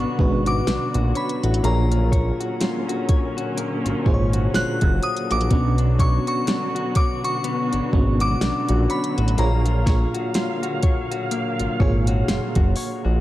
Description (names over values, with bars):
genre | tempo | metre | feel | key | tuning
contemporary R&B | 62 BPM | 4/4 | swing 58% on 16ths | F# major | A4 = 440 Hz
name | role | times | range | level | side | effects
glassy synth bell | melody | 0.0-10.3 s | A#5 to F#6 | -27 LUFS | left 1 dB | chorus, digital delay
FM electric piano with tremolo | accompaniment | 0.0-13.2 s | A#2 to C#5 | -26 LUFS | right 2 dB | none
muted studio string section | sustained chords | 0.0-13.2 s | D3 to E#5 | -29 LUFS | right 1 dB | sidechain pumping
direct-recorded clean electric guitar | arpeggios | 0.0-13.2 s | A#3 to C#5 | -28 LUFS | left 8 dB | spring reverb
fat analog bass | bass | 0.0-13.2 s | F#1 to B1 | -21 LUFS | equal | none
smooth R&B drum kit | drums | 0.2-13.0 s | hi-hat, kick drum, snare drum | -22 LUFS | equal | none
room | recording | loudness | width
digital ambience | dark, warm production | -18 LUFS | side -15 dB against mid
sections
0.0-13.2 A section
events
none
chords
0.0 Bmadd9; 1.6 F#maj7/A#; 5.5 Bmadd9; 9.4 F#maj7/A#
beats
0.67 | 1.64 2.61 3.57 4.54 | 5.51 6.48 7.45 8.41 | 9.38 10.35 11.32 12.28